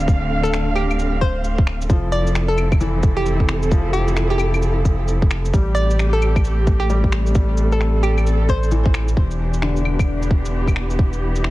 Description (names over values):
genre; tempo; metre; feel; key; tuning
future garage; 132 BPM; 4/4; swing 62% on 16ths; A minor; A4 = 438 Hz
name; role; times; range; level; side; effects
clear upright piano; accompaniment; 0.0-11.5 s; D3 to G3; -28 LUFS; left 3 dB; vintage 12-bit sampler grit, sidechain pumping, tape echo
rich studio string section; sustained chords; 0.0-11.5 s; D3 to F5; -25 LUFS; right 1 dB; vintage 12-bit sampler grit, sidechain pumping
warm sub bass; bass; 0.0-11.5 s; D1 to A1; -20 LUFS; equal; tube saturation, sidechain pumping
electronic shaker, finger snaps, claves and cabasa; drums; 0.0-11.5 s; none; -28 LUFS; left 2 dB; soft clipping on snare
electronic kick drum; drums; 0.1-11.1 s; none; -16 LUFS; equal; none
hollow square pluck; melody; 0.4-9.1 s; G4 to D5; -26 LUFS; equal; chorus, tape echo
room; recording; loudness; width
digital ambience; dense, heavily limited modern master, cassette tape; -16 LUFS; side -17 dB against mid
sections
0.0-9.2 A section; 9.2-11.5 B section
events
none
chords
0.0 Dm7; 1.9 Fmaj7; 5.5 Am7; 9.2 Em7